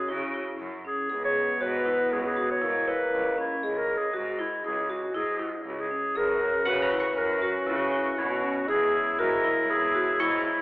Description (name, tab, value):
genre	contemporary instrumental, chamber music in an uneven meter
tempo	119 BPM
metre	5/4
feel	straight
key	C# dorian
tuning	A4 = 440 Hz
part	warm clarinet	melody	0.0-10.6 s	E4 to C#5	-27 LUFS	equal	none
part	mellow French horn	second line	0.0-10.6 s	G#3 to E4	-33 LUFS	equal	none
part	vibraphone with medium mallets	arpeggios	0.0-10.6 s	C#4 to G#4	-32 LUFS	equal	none
part	bright cello	bass	0.1-10.6 s	C#2 to C#3	-34 LUFS	right 1 dB	none
part	warm woodwind section	sustained chords	6.2-10.6 s	C#3 to F#4	-33 LUFS	equal	none
part	steel-string zither	texture	6.7-10.6 s	F#5 to C#6	-32 LUFS	equal	none
room	wet recital hall reverb, RT60 1.6 s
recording	recorded in a church or concert hall, telephone sound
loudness	-24 LUFS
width	side -21 dB against mid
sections	0.0-6.2 A section; 6.2-10.6 B section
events	none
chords	0.0 F#7(no3); 1.1 C#m; 6.2 F#7; 8.7 C#m/E